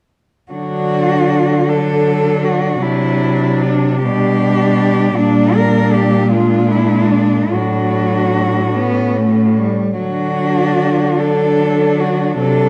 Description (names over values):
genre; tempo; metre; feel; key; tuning
classical, lyrical piece for cello ensemble; 48-54 BPM (dotted quarters); 6/8; rubato; D major; A4 = 440 Hz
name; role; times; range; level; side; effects
rich cello; melody; 0.5-12.7 s; D4 to Bb4; -20 LUFS; equal; none
rich cello; second line; 0.5-12.7 s; C#4 to D4; -24 LUFS; equal; none
clear cello; accompaniment; 0.5-12.7 s; F#3 to B3; -20 LUFS; equal; none
clear cello; bass; 0.5-12.7 s; A2 to D3; -19 LUFS; equal; none
room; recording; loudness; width
moderate recital hall reverb, RT60 1.4 s; dark, warm production; -14 LUFS; mono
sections
0.5-12.7 A section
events
none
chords
0.5 D; 2.8 D7/C; 4.0 G/B; 5.2 Gm/Bb; 6.3 Bb7; 7.5 D/A; 8.8 A; 10.0 D